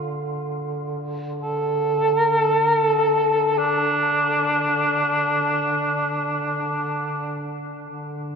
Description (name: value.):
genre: caucasian folk, Caucasian lament.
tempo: free time.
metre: none.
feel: none.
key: unclear.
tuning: A4 = 440 Hz.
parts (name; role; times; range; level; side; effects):
dark cor anglais; melody; 0.0-7.5 s; D4 to A4; -20 LUFS; equal; none.
dark duduk; drone; 0.0-8.4 s; D3; -29 LUFS; right 1 dB; stereo widening.
room: wet cathedral reverb, RT60 6.1 s.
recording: in a vast, echoing space.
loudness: -19 LUFS.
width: side -6 dB against mid.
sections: 0.0-7.8 A section.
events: none.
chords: none.